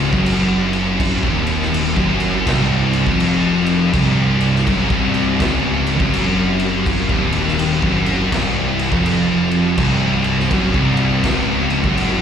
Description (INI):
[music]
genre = stoner and doom metal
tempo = 82 BPM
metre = 4/4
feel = swing 63% on 8ths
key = C phrygian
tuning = A4 = 440 Hz
[part]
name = deep rumbling drone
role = sustained chords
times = 0.0-12.2 s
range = C3 to G4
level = -31 LUFS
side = right 2 dB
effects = none
[part]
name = scooped high-gain guitar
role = riff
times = 0.0-12.2 s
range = C2 to F#2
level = -19 LUFS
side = equal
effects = distortion
[part]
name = thick fuzz guitar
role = riff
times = 0.0-12.2 s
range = C2 to F#2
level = -21 LUFS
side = left 7 dB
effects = distortion, slapback echo
[part]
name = thick fuzz guitar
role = riff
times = 0.0-12.2 s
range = C2 to F#2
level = -22 LUFS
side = right 8 dB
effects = distortion, slapback echo
[part]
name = fuzz picked electric bass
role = bass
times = 0.0-12.2 s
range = C1 to F#1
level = -24 LUFS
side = equal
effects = overdrive
[part]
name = raw garage drum kit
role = drums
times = 0.1-12.2 s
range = crash cymbal, kick drum, snare drum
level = -22 LUFS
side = equal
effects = none
[sound]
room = light reverb, small room ambience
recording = live gig heard through the venue's PA, recital hall reverb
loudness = -14 LUFS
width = side -8 dB against mid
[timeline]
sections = 0.0-12.2 A section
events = none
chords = 0.0 Cm